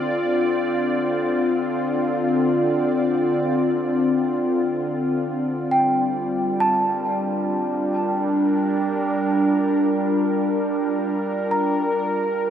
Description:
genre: ambient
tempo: free time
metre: none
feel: none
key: G minor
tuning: A4 = 439 Hz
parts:
  - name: evolving wavetable pad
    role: sustained chords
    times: 0.0-12.5 s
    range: D3 to D5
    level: -20 LUFS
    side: equal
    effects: chorus, built-in reverb
  - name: celesta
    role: arpeggios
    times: 5.7-12.5 s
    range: G5 to Bb5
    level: -24 LUFS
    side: right 1 dB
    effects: diffuse ambient delay
room: wet huge ambient reverb, RT60 8.4 s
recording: dark, warm production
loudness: -19 LUFS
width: side -9 dB against mid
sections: 0.0-5.7 A section; 5.7-12.5 B section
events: none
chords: 0.0 Dm7; 5.7 Gm7

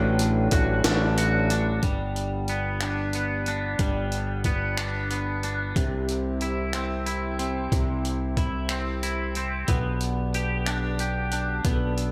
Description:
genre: post-rock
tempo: 61 BPM (dotted quarters)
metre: 6/8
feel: straight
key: G major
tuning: A4 = 440 Hz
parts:
  - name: hand-pumped harmonium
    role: sustained chords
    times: 0.0-12.1 s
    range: C3 to A4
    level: -37 LUFS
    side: equal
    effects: none
  - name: twangy electric guitar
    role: arpeggios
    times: 0.0-12.1 s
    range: A2 to G4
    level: -31 LUFS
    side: equal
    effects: lush chorus, slapback echo
  - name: growling fingered electric bass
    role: bass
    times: 0.0-12.1 s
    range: G1 to C2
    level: -30 LUFS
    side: equal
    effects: overdrive
  - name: breakbeat sampler-style drum kit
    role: drums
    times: 0.2-12.1 s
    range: finger snaps, hi-hat, kick drum, snare drum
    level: -30 LUFS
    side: equal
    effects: none
room: moderate lush hall reverb, RT60 1.5 s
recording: big arena sound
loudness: -26 LUFS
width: mono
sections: 0.0-1.8 A section; 1.8-12.1 B section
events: none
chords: 0.0 Dadd9/A; 1.8 G; 5.8 C; 9.7 G/B

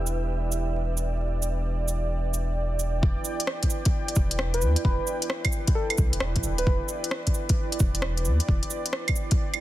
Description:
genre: future garage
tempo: 132 BPM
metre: 4/4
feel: swing 66% on 16ths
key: E minor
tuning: A4 = 445 Hz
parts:
  - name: dark analog pad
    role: sustained chords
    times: 0.0-9.6 s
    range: E4 to G5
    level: -33 LUFS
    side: right 1 dB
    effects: chorus, vintage 12-bit sampler grit, sidechain pumping
  - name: warm sub bass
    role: bass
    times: 0.0-8.6 s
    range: D1 to E2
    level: -27 LUFS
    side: equal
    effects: sidechain pumping
  - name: wind-like tuned noise texture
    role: texture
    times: 0.0-3.0 s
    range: E5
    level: -40 LUFS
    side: right 8 dB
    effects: built-in reverb
  - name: organic electronic drum kit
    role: drums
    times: 0.1-9.6 s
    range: cabasa, claves, hi-hat, rim click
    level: -30 LUFS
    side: equal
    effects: overdrive, studio reverb
  - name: electronic kick drum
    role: drums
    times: 3.0-9.4 s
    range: none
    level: -24 LUFS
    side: equal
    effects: overdrive, studio reverb
  - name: soft struck synth lead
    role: melody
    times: 4.5-7.2 s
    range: A4 to B4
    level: -35 LUFS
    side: left 1 dB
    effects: chorus, dub echo
room: digital ambience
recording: dense, heavily limited modern master, vinyl crackle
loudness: -23 LUFS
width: side -15 dB against mid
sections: 0.0-3.0 A section; 3.0-9.6 B section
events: none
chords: 0.0 Em7

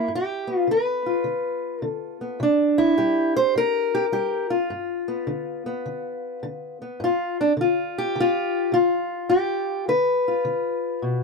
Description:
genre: acoustic country blues, solo or duo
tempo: 104 BPM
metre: 4/4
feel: swing 65% on 8ths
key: G mixolydian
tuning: A4 = 440 Hz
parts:
  - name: fingerpicked steel-string acoustic guitar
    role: solo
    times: 0.0-11.2 s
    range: G2 to C5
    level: -21 LUFS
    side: left 1 dB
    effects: none
room: little or no reverb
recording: dry, close 1970s-style studio recording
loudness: -21 LUFS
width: side -4 dB against mid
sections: 0.0-11.2 A section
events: none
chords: 0.1 G7; 2.4 C7; 4.7 G7

